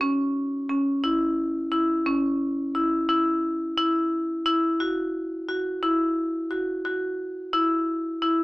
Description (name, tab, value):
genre	progressive instrumental, progressive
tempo	176 BPM (eighths)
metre	11/8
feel	straight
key	unclear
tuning	A4 = 440 Hz
part	marimba with hard mallets	solo	0.0-8.4 s	C#4 to F#4	-22 LUFS	equal	none
room	moderate studio reverb, RT60 0.6 s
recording	small speaker sound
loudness	-23 LUFS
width	side -21 dB against mid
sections	0.0-8.4 A section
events	none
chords	none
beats	| 0.01 0.35 0.70 1.04 1.38 1.72 2.06 2.41 2.75 3.09 3.43 | 3.78 4.12 4.46 4.80 5.14 5.49 5.83 6.17 6.51 6.85 7.19 | 7.54 7.88 8.22